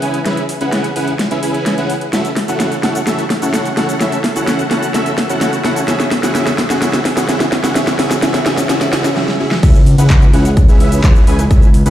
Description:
EDM, festival progressive house; 128 BPM; 4/4; straight; C# minor; A4 = 440 Hz
dense compressed supersaw; riff; 0.0-11.9 s; C#4 to G#5; -16 LUFS; equal; sidechain pumping, low-pass filter, dub echo
big-room dance drum kit; drums; 0.0-11.9 s; crash cymbal, handclaps, hi-hat, rim click, shaker, snare drum; -17 LUFS; equal; overdrive
fat analog bass; bass; 9.6-11.9 s; C#2; -12 LUFS; equal; sidechain pumping
electronic kick drum; drums; 9.6-11.6 s; -8 LUFS; equal; overdrive
moderate lush hall reverb, RT60 2.1 s; played on a big sound system in a bare room, large studio reverb; -11 LUFS; side -12 dB against mid
0.0-9.6 A section; 9.6-11.9 B section
build-up 0.0-9.6; drum fill 0.0-9.2, 9.2-9.6; drop 9.6-11.9
0.0 C#m7; 2.1 F#m7; 5.9 E6; 9.6 C#m7
| 0.26 0.73 1.20 1.66 | 2.13 2.60 3.07 3.54 | 4.01 4.48 4.95 5.41 | 5.88 6.35 6.82 7.29 | 7.76 8.23 8.70 9.16 | 9.63 10.10 10.57 11.04 | 11.51

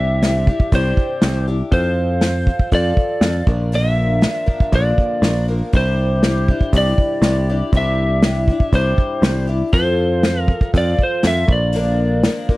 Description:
folk rock and heartland rock; 120 BPM; 4/4; straight; C mixolydian; A4 = 441 Hz
electric slide guitar; melody; 0.0-12.5 s; C5 to E5; -21 LUFS; equal
picked twelve-string acoustic guitar; accompaniment; 0.0-12.6 s; Bb2 to Bb4; -24 LUFS; left 3 dB
picked electric bass; bass; 0.0-12.3 s; Bb1 to F2; -18 LUFS; equal
unplugged drum kit; drums; 0.2-12.6 s; hi-hat, kick drum, snare drum; -16 LUFS; equal
little or no reverb; dry, close 1970s-style studio recording; -14 LUFS; side -19 dB against mid
0.0-12.6 A section
0.0 Cadd9; 1.7 F; 3.5 Bb; 5.7 Cadd9; 9.7 F; 11.5 Bb
0.23 0.73 1.23 | 1.73 2.23 2.73 3.23 | 3.73 4.23 4.73 5.23 | 5.74 6.24 6.74 7.24 | 7.74 8.24 8.74 9.24 | 9.74 10.24 10.75 11.25 | 11.75 12.25

